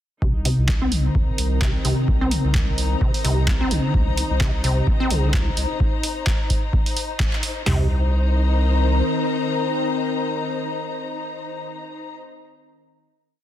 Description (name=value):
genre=acid house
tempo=129 BPM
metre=4/4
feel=swing 56% on 16ths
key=C minor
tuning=A4 = 440 Hz
part: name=warbly tape-like pad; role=sustained chords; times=1.0-12.1 s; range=Eb3 to C5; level=-28 LUFS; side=left 2 dB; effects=chorus, built-in reverb, phaser, sidechain pumping
part: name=acid bass, square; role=riff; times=0.2-7.9 s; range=C2 to Eb4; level=-24 LUFS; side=equal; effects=overdrive, analog chorus, sidechain pumping, digital delay
part: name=saturated sub bass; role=bass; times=0.2-9.0 s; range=C2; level=-21 LUFS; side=equal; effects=sidechain pumping
part: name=booming analog drum machine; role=drums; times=0.2-7.8 s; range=hi-hat, kick drum, snare drum, toms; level=-22 LUFS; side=equal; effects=none
part: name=dark studio string section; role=texture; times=0.2-12.1 s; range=Eb4 to Bb5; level=-28 LUFS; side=left 4 dB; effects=sidechain pumping
part: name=punchy analog drum machine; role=drums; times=0.5-7.5 s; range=handclaps, hi-hat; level=-28 LUFS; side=right 1 dB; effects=none
room=light reverb, digital ambience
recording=dense, heavily limited modern master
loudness=-18 LUFS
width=side -12 dB against mid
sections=0.2-7.7 groove; 7.7-11.4 final chord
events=filter sweep on acid bass 0.2-5.8; band accent 7.2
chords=0.2 Cm7